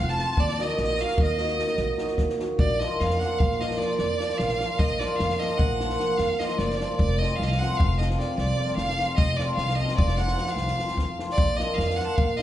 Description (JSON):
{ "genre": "balkan folk, Balkan wedding band", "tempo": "300 BPM (eighths)", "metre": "11/8", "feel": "straight", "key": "unclear", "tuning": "A4 = 440 Hz", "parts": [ { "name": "bright violin", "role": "melody", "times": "0.0-12.4 s", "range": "D5 to A5", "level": "-28 LUFS", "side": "right 1 dB", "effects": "none" }, { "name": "musette accordion", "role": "second line", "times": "0.0-2.1 s", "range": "D5 to A5", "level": "-35 LUFS", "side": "equal", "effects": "none" }, { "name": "cimbalom", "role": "accompaniment", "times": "0.0-12.4 s", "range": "F3 to Gb4", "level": "-28 LUFS", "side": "right 1 dB", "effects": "none" }, { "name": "upright bass", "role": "bass", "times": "0.0-12.4 s", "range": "F1 to F2", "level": "-28 LUFS", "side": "equal", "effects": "none" }, { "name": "compact cocktail drum kit", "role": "percussion", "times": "0.1-12.4 s", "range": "kick drum, snare drum", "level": "-28 LUFS", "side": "equal", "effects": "none" } ], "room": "moderate recital hall reverb, RT60 1.8 s", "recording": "heard from further back in the room, nothing above 10.8 kHz", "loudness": "-22 LUFS", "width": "side -12 dB against mid", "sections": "0.0-2.6 A section; 2.6-12.4 B section", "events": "none", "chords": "0.4 Ebm; 2.6 Bb; 7.0 F; 11.4 Bb" }